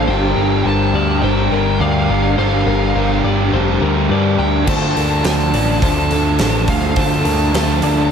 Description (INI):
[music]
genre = rock, shoegaze and dream pop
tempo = 105 BPM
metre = 4/4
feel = straight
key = unclear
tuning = A4 = 442 Hz
[part]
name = smooth overdriven lead guitar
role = melody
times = 0.0-8.1 s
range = F5 to A5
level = -23 LUFS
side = equal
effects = tape echo
[part]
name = twelve-string electric guitar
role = arpeggios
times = 0.0-8.1 s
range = A4 to D5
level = -25 LUFS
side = left 7 dB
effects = wide subtle chorus, tape echo
[part]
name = crunchy overdriven guitar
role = riff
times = 0.0-8.1 s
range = D3 to Bb4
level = -21 LUFS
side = right 8 dB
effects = reverse reverb
[part]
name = distorted electric guitar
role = riff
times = 0.0-8.1 s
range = G2 to D4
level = -21 LUFS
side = left 2 dB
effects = distortion
[part]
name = raw garage guitar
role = riff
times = 0.0-8.1 s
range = D3 to Bb4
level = -22 LUFS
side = left 7 dB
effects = overdrive, wide subtle chorus
[part]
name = growling picked electric bass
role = bass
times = 0.0-8.1 s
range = F1 to G2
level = -18 LUFS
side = equal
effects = overdrive
[part]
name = huge arena drum kit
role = drums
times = 4.7-8.0 s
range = crash cymbal, hi-hat, kick drum, snare drum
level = -20 LUFS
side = right 1 dB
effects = none
[sound]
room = moderate lush hall reverb, RT60 2.1 s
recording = dreamy mix soaked in reverb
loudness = -13 LUFS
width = side -7 dB against mid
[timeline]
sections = 0.0-8.1 A section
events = none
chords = 0.1 Gm7; 4.7 Dm7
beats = | 0.08 0.66 1.23 1.80 | 2.38 2.95 3.53 4.10 | 4.67 5.25 5.82 6.40 | 6.97 7.54